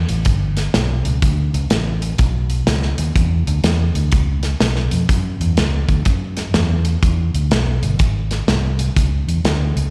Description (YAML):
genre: uptempo gospel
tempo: 124 BPM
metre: 4/4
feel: swing 64% on 8ths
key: unclear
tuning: A4 = 440 Hz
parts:
  - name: fingered electric bass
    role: bass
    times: 0.0-9.9 s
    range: G1 to F#2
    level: -20 LUFS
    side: equal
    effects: none
  - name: modern studio drum kit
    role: drums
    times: 0.1-9.8 s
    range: hi-hat, kick drum, snare drum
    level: -22 LUFS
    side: equal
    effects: none
room: little or no reverb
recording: live gig heard through the venue's PA, recital hall reverb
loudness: -18 LUFS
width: mono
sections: 0.0-9.9 A section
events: none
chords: none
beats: 0.26 0.74 | 1.22 1.71 2.19 2.67 | 3.15 3.64 4.12 4.61 | 5.09 5.57 6.06 6.54 | 7.02 7.51 7.99 8.48 | 8.96 9.45